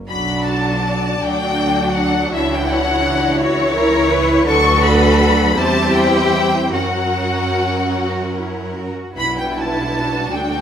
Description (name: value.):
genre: classical, slow romantic movement for string orchestra.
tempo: 49-58 BPM (dotted quarters).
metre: 6/8.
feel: rubato.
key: B minor.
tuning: A4 = 440 Hz.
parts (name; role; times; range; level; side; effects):
dark chamber cello section; bass; 0.0-10.6 s; D4 to B4; -22 LUFS; right 2 dB; none.
rich studio violin section; melody; 0.1-10.6 s; C#5 to C#6; -19 LUFS; left 4 dB; none.
rich chamber violin section; second line; 0.1-10.6 s; E4 to D5; -22 LUFS; left 2 dB; none.
rich studio viola section; accompaniment; 0.1-10.6 s; E3 to E4; -21 LUFS; right 1 dB; none.
clear chamber double bass section; bass; 0.1-10.6 s; B1 to F#2; -22 LUFS; right 2 dB; none.
room: moderate recital hall reverb, RT60 1.7 s.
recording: none.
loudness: -14 LUFS.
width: side -8 dB against mid.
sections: 0.1-10.6 A section.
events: none.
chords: 0.1 Bm; 1.2 D; 2.3 F#7/C#; 4.5 Bm/D; 5.6 C/E; 6.7 F#; 9.2 Bm.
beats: | 0.10 1.22 | 2.33 3.41 | 4.47 5.57 | 6.73 7.95 | 9.16 10.30.